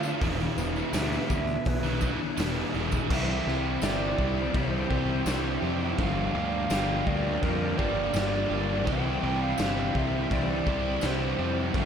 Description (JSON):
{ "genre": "rock, shoegaze and dream pop", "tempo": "83 BPM", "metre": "4/4", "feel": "straight", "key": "C major", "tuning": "A4 = 440 Hz", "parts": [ { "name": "string machine, cellos", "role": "sustained chords", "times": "0.0-11.9 s", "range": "E3 to B5", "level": "-38 LUFS", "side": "left 1 dB", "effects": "phaser, ensemble chorus" }, { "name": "mellow electric guitar", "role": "arpeggios", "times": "0.0-11.9 s", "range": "E3 to G#4", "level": "-39 LUFS", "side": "equal", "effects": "none" }, { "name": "overdriven electric guitar", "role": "riff", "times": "0.0-11.9 s", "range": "E2 to G4", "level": "-32 LUFS", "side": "right 8 dB", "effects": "reverse reverb" }, { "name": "thick fuzz guitar", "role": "riff", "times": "0.0-11.9 s", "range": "E2 to D4", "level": "-32 LUFS", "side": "left 9 dB", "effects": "distortion, lush chorus" }, { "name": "fuzz picked electric bass", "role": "bass", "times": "0.0-11.9 s", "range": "E1 to D3", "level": "-32 LUFS", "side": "equal", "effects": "overdrive" }, { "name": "tambourine", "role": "percussion", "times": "0.0-11.2 s", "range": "none", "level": "-44 LUFS", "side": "left 16 dB", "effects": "none" }, { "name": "raw garage drum kit", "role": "drums", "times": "0.2-11.9 s", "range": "crash cymbal, hi-hat, kick drum, snare drum", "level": "-32 LUFS", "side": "equal", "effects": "none" }, { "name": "reedy FM lead", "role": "melody", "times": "0.9-11.9 s", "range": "Bb4 to G5", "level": "-34 LUFS", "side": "right 1 dB", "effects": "chorus, tape echo" } ], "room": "wet plate reverb, RT60 1.8 s, studio reverb", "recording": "dreamy mix soaked in reverb", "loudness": "-25 LUFS", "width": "side -8 dB against mid", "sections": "0.0-3.1 A section; 3.1-11.9 B section", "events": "none", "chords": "0.2 E7; 3.1 Cmaj7; 6.0 Gm7; 8.9 Cmaj7" }